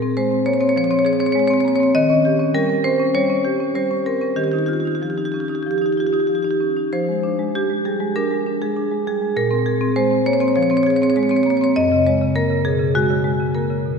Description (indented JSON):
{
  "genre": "classical, contemporary piece for solo marimba",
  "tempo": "98 BPM",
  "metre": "4/4",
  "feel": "uneven beats, rubato",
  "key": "unclear",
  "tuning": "A4 = 440 Hz",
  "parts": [
    { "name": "marimba with medium hard mallets", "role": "solo", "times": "0.0-14.0 s", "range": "F#2 to Eb5", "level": "-16 LUFS", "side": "equal", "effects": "none" }
  ],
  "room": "wet church reverb, RT60 2.9 s",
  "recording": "nothing above 10.6 kHz",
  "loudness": "-16 LUFS",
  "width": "side -5 dB against mid",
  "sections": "0.0-14.0 A section",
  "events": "none",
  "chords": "0.0 Bbm9; 1.9 Eb7; 4.4 Ebadd9; 6.9 Fm6; 9.4 Bbm9; 11.8 F#add9",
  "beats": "0.18 0.76 1.35 | 1.94 2.54 3.13 3.74 | 4.36 5.00 5.64 6.27 | 6.90 7.52 8.14 8.76 | 9.36 9.97 10.56 11.17 | 11.77 12.36 12.95 13.55"
}